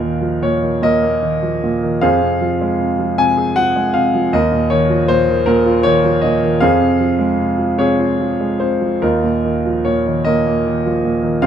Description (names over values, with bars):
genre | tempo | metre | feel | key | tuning
classical, lyrical solo piano | 51 BPM (dotted quarters) | 6/8 | uneven beats, rubato | unclear | A4 = 440 Hz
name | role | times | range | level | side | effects
clear concert grand piano | solo | 0.0-11.5 s | Eb2 to Ab5 | -13 LUFS | equal | none
room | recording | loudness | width
light reverb | close, detailed microphones | -13 LUFS | side -9 dB against mid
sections
0.0-11.5 A section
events
none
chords
0.0 Ebsus2; 2.0 Fm; 4.3 Ebsus2; 6.6 Dbmaj7/F; 9.0 Ebsus2